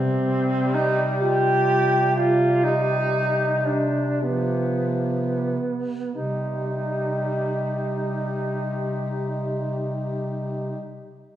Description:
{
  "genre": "classical, lyrical piece for single-reed quartet",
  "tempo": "29-48 BPM (dotted quarters)",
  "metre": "6/8",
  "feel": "rubato",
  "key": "C minor",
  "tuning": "A4 = 439 Hz",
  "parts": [
    { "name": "mellow clarinet", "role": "melody", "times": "0.0-10.8 s", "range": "F4 to G4", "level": "-32 LUFS", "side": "left 2 dB", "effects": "none" },
    { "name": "warm alto saxophone", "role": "second line", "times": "0.0-10.8 s", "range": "B3 to G4", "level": "-24 LUFS", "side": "right 1 dB", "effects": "none" },
    { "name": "bright tenor saxophone", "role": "accompaniment", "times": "0.0-10.8 s", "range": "F3 to G3", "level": "-30 LUFS", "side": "left 2 dB", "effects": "none" },
    { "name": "warm bass clarinet", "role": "bass", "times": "0.0-10.8 s", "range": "C3", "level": "-27 LUFS", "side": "equal", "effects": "none" }
  ],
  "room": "wet recital hall reverb, RT60 1.8 s",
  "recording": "heard from further back in the room",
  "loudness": "-21 LUFS",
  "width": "side -11 dB against mid",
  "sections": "0.0-6.1 A section; 6.1-10.0 B section",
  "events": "slowing down 0.0-6.1",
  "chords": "0.0 C5; 6.1 Cm",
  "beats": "1.21 | 2.64 4.22 | 6.15 8.08"
}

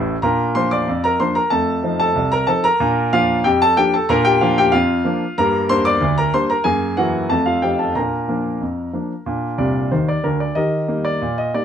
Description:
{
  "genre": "ragtime piano",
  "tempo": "93 BPM",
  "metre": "2/4",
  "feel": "straight",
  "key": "Bb major",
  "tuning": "A4 = 441 Hz",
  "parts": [
    { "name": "warm baby grand piano", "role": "solo", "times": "0.0-11.6 s", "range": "A1 to D6", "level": "-16 LUFS", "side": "equal", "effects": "none" }
  ],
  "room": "light reverb",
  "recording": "close, detailed microphones",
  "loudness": "-16 LUFS",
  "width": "side -8 dB against mid",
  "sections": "0.0-10.6 A section; 10.6-11.6 B section",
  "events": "grand piano fill 0.0, 9.6-10.6",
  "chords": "0.2 Bb; 1.5 F7; 2.8 Bb; 5.4 Gm; 6.7 Gb7; 7.3 F7; 8.0 Bb; 10.6 Eb",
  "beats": "| 0.23 0.87 | 1.52 2.16 | 2.80 3.45 | 4.09 4.74 | 5.38 6.02 | 6.66 7.31 | 7.96 8.61 | 9.26 9.91 | 10.56 11.21"
}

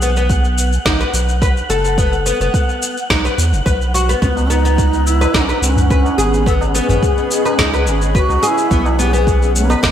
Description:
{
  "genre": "organic downtempo",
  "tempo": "107 BPM",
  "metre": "4/4",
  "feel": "straight",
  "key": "B mixolydian",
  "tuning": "A4 = 440 Hz",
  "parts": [
    { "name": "oud", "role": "arpeggios", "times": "0.0-9.9 s", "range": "B3 to B4", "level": "-19 LUFS", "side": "left 2 dB", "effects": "ping-pong delay" },
    { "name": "round analog bass", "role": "bass", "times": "0.0-9.9 s", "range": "F#1 to E2", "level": "-17 LUFS", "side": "equal", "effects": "sidechain pumping" },
    { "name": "electronic shaker and snare drum", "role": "drums", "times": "0.0-9.9 s", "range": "none", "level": "-22 LUFS", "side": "equal", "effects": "overdrive, gated reverb" },
    { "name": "wind-like tuned noise texture", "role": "texture", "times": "0.0-9.9 s", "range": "F#5", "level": "-26 LUFS", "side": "right 1 dB", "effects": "built-in reverb, ensemble chorus" },
    { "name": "electronic kick drum", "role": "drums", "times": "0.3-9.9 s", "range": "none", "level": "-17 LUFS", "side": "equal", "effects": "overdrive" },
    { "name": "breathy low Native American-style wooden flute", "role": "melody", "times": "4.2-9.9 s", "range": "B3 to A4", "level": "-19 LUFS", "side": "equal", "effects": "digital delay" },
    { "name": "granular cloud pad", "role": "sustained chords", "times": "5.7-9.9 s", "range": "A3 to D#5", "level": "-23 LUFS", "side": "left 1 dB", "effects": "built-in reverb, analog chorus, sidechain pumping" },
    { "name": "tabla", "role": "percussion", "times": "4.4-9.8 s", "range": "none", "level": "-25 LUFS", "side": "right 1 dB", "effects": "none" }
  ],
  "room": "moderate lush hall reverb, RT60 2.6 s",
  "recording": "bright 1980s-style digital production",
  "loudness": "-12 LUFS",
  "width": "side -10 dB against mid",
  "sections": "0.0-9.9 A section",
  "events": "none",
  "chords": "0.0 B5; 4.2 C#sus2; 8.7 Bsus2",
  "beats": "0.30 0.86 1.42 | 1.98 2.54 3.10 3.66 | 4.22 4.78 5.34 5.91 | 6.47 7.03 7.59 8.15 | 8.71 9.27 9.83"
}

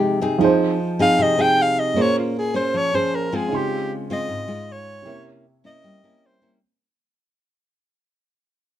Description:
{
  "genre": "bossa nova",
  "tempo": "155 BPM",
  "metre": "4/4",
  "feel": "straight",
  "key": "F minor",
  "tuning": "A4 = 441 Hz",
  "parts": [
    { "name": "dark baby grand piano", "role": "accompaniment", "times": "0.0-6.6 s", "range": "Bb2 to C6", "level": "-23 LUFS", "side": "right 5 dB", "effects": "none" },
    { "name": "nylon-string guitar", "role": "accompaniment", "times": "0.0-6.6 s", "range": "Ab2 to C5", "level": "-22 LUFS", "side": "left 2 dB", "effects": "none" },
    { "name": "bright soprano saxophone", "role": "melody", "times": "1.0-6.5 s", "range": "F4 to G5", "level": "-21 LUFS", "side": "equal", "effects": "none" }
  ],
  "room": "light reverb",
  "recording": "minimal, uncompressed stereo recording",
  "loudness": "-18 LUFS",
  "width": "side -11 dB against mid",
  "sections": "0.4-6.6 A section",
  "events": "fade-out 0.4-6.6; soprano saxophone solo 0.4-6.6",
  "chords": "0.4 Fm7; 2.0 Bbm9; 3.5 Dbmaj7; 5.1 C7b9",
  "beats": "0.03 | 0.41 0.80 1.19 1.57 | 1.96 2.35 2.74 3.12 | 3.51 3.90 4.29 4.67 | 5.06 5.45 5.84 6.22"
}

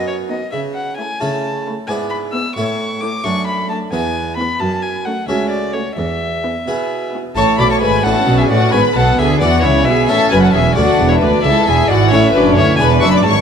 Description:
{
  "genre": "classical, baroque-style concerto movement with solo episodes",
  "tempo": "88 BPM (dotted quarters)",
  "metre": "6/8",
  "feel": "straight",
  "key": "A major",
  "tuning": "A4 = 442 Hz",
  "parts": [
    { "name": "warm violin", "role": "melody", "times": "0.0-13.3 s", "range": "B4 to E6", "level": "-19 LUFS", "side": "left 2 dB", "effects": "none" },
    { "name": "harpsichord", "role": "accompaniment", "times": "0.0-13.4 s", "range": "C#2 to D5", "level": "-20 LUFS", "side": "right 1 dB", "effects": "none" },
    { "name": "dark studio cello section", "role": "bass", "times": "0.0-13.4 s", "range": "C#2 to E3", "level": "-19 LUFS", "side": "right 2 dB", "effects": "none" },
    { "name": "warm studio violin section", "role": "melody", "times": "0.3-13.4 s", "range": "F#4 to E6", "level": "-21 LUFS", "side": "left 5 dB", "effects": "none" },
    { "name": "rich chamber violin section", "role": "second line", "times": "0.3-13.4 s", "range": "C#4 to E5", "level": "-19 LUFS", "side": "left 2 dB", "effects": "none" },
    { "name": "dark chamber viola section", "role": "accompaniment", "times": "0.3-13.4 s", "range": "A3 to E4", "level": "-22 LUFS", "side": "equal", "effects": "none" },
    { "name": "warm studio double bass section", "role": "bass", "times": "7.4-13.4 s", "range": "E1 to E2", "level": "-18 LUFS", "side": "right 3 dB", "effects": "none" }
  ],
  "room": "moderate scoring stage reverb, RT60 2.1 s",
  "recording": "none",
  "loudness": "-13 LUFS",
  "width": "side -7 dB against mid",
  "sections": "0.0-7.4 A section; 7.4-13.4 B section",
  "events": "none",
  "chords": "0.0 B; 0.5 A/C#; 1.9 E7/G#; 2.6 A; 3.3 D/F#; 3.9 E; 4.6 F#m; 6.0 E; 7.4 A5; 8.0 Bm7/A; 8.7 E7; 10.1 A; 10.8 D; 11.4 A; 12.8 E7",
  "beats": "| 0.54 1.22 | 1.89 2.57 | 3.25 3.93 | 4.61 5.29 | 5.98 6.67 | 7.36 8.05 | 8.73 9.41 | 10.09 10.76 | 11.44 12.12 | 12.79"
}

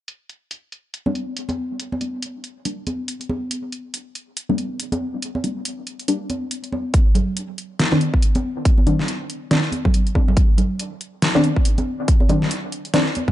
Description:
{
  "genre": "deep dubstep",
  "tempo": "140 BPM",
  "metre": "4/4",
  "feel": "swing 59% on 16ths, half-time",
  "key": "G minor",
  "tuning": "A4 = 441 Hz",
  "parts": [
    { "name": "dubstep drum kit", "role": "drums", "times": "0.1-13.3 s", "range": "hi-hat, snare drum", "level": "-24 LUFS", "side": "equal", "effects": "overdrive, low-pass filter on hats, low-pass filter on snare, low-pass filter on room" },
    { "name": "filtered dub chord stab", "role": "stabs", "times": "1.1-13.1 s", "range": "Eb3 to D4", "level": "-22 LUFS", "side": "left 1 dB", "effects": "chorus, dub echo" },
    { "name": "congas", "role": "percussion", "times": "1.1-13.3 s", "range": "none", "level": "-26 LUFS", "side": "right 1 dB", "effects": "dub echo" },
    { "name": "electronic kick drum", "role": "drums", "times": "6.9-13.3 s", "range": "none", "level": "-16 LUFS", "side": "equal", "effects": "overdrive" }
  ],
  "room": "light reverb",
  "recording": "dark, warm production, nothing above 10.6 kHz",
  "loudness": "-19 LUFS",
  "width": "side -14 dB against mid",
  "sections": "0.1-13.3 A section",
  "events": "filter sweep on drum 0.1-13.3; filter sweep on synth stab 0.1-13.3",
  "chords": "0.1 Gm; 6.9 Cmadd9",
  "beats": "| 0.08 0.51 0.94 1.37 | 1.79 2.22 2.65 3.08 | 3.51 3.94 4.37 4.79 | 5.22 5.65 6.08 6.51 | 6.94 7.37 7.79 8.22 | 8.65 9.08 9.51 9.94 | 10.37 10.79 11.22 11.65 | 12.08 12.51 12.94"
}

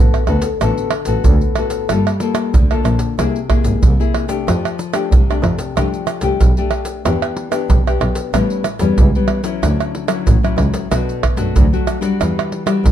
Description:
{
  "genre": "samba and choro",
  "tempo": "93 BPM",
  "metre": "4/4",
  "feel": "straight",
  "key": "D major",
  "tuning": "A4 = 440 Hz",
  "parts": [
    { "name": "nylon-string guitar", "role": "accompaniment", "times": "0.0-12.9 s", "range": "A2 to A4", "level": "-20 LUFS", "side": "left 6 dB", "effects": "none" },
    { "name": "warm double bass", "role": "bass", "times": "0.0-12.9 s", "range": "G1 to F#2", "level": "-19 LUFS", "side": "equal", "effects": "none" },
    { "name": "tube shaker, pandeiro, tamborim and surdo", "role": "percussion", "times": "0.1-12.9 s", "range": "none", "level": "-16 LUFS", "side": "right 2 dB", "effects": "none" }
  ],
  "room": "light reverb",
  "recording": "dark, warm production",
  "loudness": "-14 LUFS",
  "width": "side -10 dB against mid",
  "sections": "0.0-12.9 A section",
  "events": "none",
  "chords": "0.0 D6; 1.9 Gm9; 3.2 C7b13; 4.5 F69; 7.1 Em7; 8.3 A9; 9.6 Dmaj9; 10.9 Bm7; 12.2 Em9",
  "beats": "0.62 1.26 | 1.91 2.55 3.19 3.84 | 4.48 5.13 5.77 6.42 | 7.06 7.70 8.35 8.99 | 9.63 10.28 10.92 11.57 | 12.21 12.86"
}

